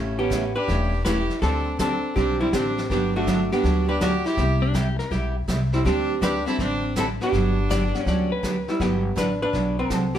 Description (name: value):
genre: country, western swing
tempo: 162 BPM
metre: 4/4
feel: swing 66% on 8ths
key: G major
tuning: A4 = 438 Hz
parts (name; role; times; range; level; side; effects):
- picked steel-string acoustic guitar; accompaniment; 0.0-10.0 s; C3 to G4; -27 LUFS; right 2 dB; none
- upright bass; bass; 0.0-10.2 s; E1 to D2; -26 LUFS; left 1 dB; none
- archtop guitar, miked and amplified; melody; 0.2-10.2 s; G3 to D5; -25 LUFS; right 1 dB; plate reverb
- bright fiddle; second line; 0.2-8.4 s; C4 to G4; -30 LUFS; right 1 dB; none
- vintage brush drum kit; drums; 0.3-10.2 s; brushed snare drum, hi-hat, kick drum, snare drum; -32 LUFS; left 1 dB; none
- dark upright piano; accompaniment; 3.5-8.4 s; G3 to F#5; -34 LUFS; left 5 dB; none
- clean lap steel guitar; second line; 4.6-5.4, 7.7-8.7 s; D4 to D5; -29 LUFS; left 6 dB; none
room: moderate studio reverb, RT60 0.9 s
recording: none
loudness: -20 LUFS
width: side -10 dB against mid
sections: 0.0-8.8 A section; 8.8-10.2 A section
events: none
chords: 0.0 A7; 1.4 D7sus4; 2.9 Gmaj7; 4.4 Cmaj7; 5.9 D7sus4; 7.3 Gmaj7